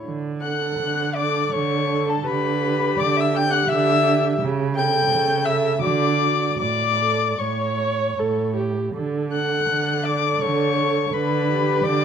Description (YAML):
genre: classical, slow romantic movement for string quartet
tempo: 75-87 BPM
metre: 3/4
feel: rubato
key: D major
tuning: A4 = 441 Hz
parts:
  - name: muted violin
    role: second line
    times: 0.0-12.0 s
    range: A4 to G5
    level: -24 LUFS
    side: left 3 dB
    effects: none
  - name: muted viola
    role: accompaniment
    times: 0.0-12.0 s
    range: F#4 to C#5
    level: -26 LUFS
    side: right 3 dB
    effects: none
  - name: muted cello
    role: bass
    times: 0.0-12.0 s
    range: A2 to D3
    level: -24 LUFS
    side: right 5 dB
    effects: none
  - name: muted violin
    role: melody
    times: 0.4-12.0 s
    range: A5 to G6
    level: -25 LUFS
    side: left 9 dB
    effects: none
room: moderate recital hall reverb, RT60 1.6 s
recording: close, detailed microphones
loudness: -19 LUFS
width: side -8 dB against mid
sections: 0.0-12.0 A section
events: none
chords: 0.0 D; 2.3 Em7/D; 4.4 A7/C#; 5.8 D; 6.6 A; 8.9 D; 11.1 Em7/D (rootless)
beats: | 0.05 0.80 1.53 | 2.27 3.00 3.71 | 4.42 5.11 5.83 | 6.60 7.39 8.17 | 8.95 9.69 10.42 | 11.14 11.86